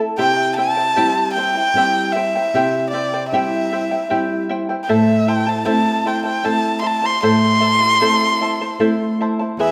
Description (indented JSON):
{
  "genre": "andean folk",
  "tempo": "77 BPM",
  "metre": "3/4",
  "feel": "straight",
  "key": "A minor pentatonic",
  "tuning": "A4 = 440 Hz",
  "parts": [
    { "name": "charango", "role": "accompaniment", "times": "0.0-9.7 s", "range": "E4 to A5", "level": "-24 LUFS", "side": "equal", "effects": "none" },
    { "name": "dark erhu", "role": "melody", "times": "0.2-9.7 s", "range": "D5 to C6", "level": "-20 LUFS", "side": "equal", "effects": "none" },
    { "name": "nylon-string guitar", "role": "accompaniment", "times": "0.2-9.7 s", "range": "E2 to E4", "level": "-23 LUFS", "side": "equal", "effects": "none" }
  ],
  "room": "wet recital hall reverb, RT60 1.4 s",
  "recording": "none",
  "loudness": "-17 LUFS",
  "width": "mono",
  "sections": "0.2-9.7 A section",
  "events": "none",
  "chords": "0.2 C; 4.9 Am"
}